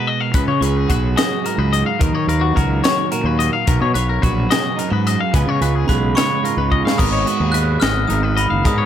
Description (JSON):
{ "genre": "math rock and midwest emo", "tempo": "72 BPM (dotted quarters)", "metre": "6/8", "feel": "straight", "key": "unclear", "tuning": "A4 = 440 Hz", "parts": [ { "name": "twelve-string electric guitar", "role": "accompaniment", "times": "0.0-8.9 s", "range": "F#2 to C#5", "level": "-22 LUFS", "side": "right 7 dB", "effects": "none" }, { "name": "twangy electric guitar", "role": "arpeggios", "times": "0.0-8.9 s", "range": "F#4 to E#5", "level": "-21 LUFS", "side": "left 8 dB", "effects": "analog delay" }, { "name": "fuzz fingered electric bass", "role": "bass", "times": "0.3-8.9 s", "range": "F#1 to D#3", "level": "-19 LUFS", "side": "equal", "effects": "overdrive" }, { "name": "crisp fusion drum kit", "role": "drums", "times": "0.3-8.8 s", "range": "crash cymbal, hi-hat, kick drum, snare drum", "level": "-21 LUFS", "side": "equal", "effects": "none" }, { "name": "glockenspiel with hard plastic mallets", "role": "melody", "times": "5.9-8.9 s", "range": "B5 to F#6", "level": "-22 LUFS", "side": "right 2 dB", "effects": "analog delay" } ], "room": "moderate spring reverb, RT60 2.0 s", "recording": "echo-heavy mix", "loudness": "-15 LUFS", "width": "side -10 dB against mid", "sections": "0.0-7.0 A section; 7.0-8.9 B section", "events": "drum fill 6.7", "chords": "0.0 G#m7; 2.0 D#m7; 3.7 Bmaj7; 5.3 C#7; 7.0 G#m9", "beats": "| 0.34 1.17 | 2.00 2.83 | 3.66 4.50 | 5.33 6.16 | 6.99 7.82 | 8.65" }